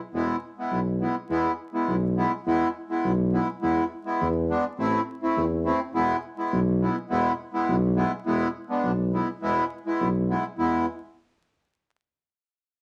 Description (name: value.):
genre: klezmer.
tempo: 103 BPM.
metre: 2/4.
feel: straight.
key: E major.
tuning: A4 = 440 Hz.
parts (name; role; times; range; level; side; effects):
accordion; accompaniment; 0.1-10.9 s; G#3 to E4; -28 LUFS; equal; none.
dark tuba; bass; 0.1-10.9 s; E1 to E2; -29 LUFS; equal; none.
room: moderate studio reverb, RT60 0.6 s.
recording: vinyl crackle.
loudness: -26 LUFS.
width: mono.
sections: 0.0-1.3 A section; 1.3-10.6 A section; 10.6-11.7 B section.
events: none.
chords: 0.0 E; 3.6 E7; 4.8 Am; 5.9 E; 8.3 E7; 9.4 E.